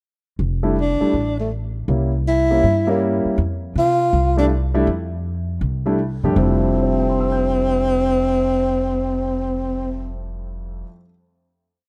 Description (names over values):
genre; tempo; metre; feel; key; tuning
jazz, small-group swing and bop; 161 BPM; 4/4; swing 65% on 8ths; F major; A4 = 440 Hz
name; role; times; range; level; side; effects
upright bass; bass; 0.4-10.8 s; F1 to C3; -24 LUFS; equal; none
warm concert grand piano; accompaniment; 0.6-11.1 s; F2 to G6; -25 LUFS; equal; none
breathy tenor saxophone; melody; 0.8-10.1 s; A3 to F4; -22 LUFS; equal; none
room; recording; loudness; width
light reverb, studio reverb; rough home demo mix; -19 LUFS; mono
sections
0.4-6.4 A section; 6.4-9.4 final chord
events
none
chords
0.4 Fmaj13; 1.9 C7b9; 3.4 F69; 6.4 Fmaj13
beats
| 0.39 0.77 1.14 1.51 | 1.89 2.26 2.63 3.01 | 3.38 3.75 4.13 4.50 | 4.87 5.25 5.62 5.99 | 6.37 6.74 7.11 7.49 | 7.86 8.23 8.61 8.98